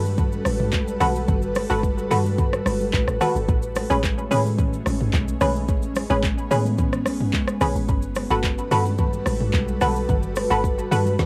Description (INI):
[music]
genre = amapiano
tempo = 109 BPM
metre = 4/4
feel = straight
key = unclear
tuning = A4 = 440 Hz
[part]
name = ethereal airy pad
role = sustained chords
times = 0.0-11.3 s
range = G3 to B4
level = -30 LUFS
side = equal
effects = ensemble chorus, built-in reverb, cassette tape
[part]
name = punchy chord stab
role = stabs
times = 0.0-11.0 s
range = C#4 to B4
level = -27 LUFS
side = equal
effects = chorus, cassette tape, tape echo
[part]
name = deep log drum bass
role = bass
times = 0.0-11.2 s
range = G1 to A2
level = -28 LUFS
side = equal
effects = none
[part]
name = congas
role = percussion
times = 0.0-11.3 s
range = none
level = -33 LUFS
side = equal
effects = none
[part]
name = deep house drum kit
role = drums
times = 0.1-11.3 s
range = handclaps, hi-hat, kick drum, rim click, shaker, snare drum, toms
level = -27 LUFS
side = equal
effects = cassette tape
[sound]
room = light reverb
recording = home recording on cassette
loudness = -22 LUFS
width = mono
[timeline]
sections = 0.0-11.3 A section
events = none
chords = 0.0 Gmaj9; 3.5 Amaj9; 7.9 Gmaj9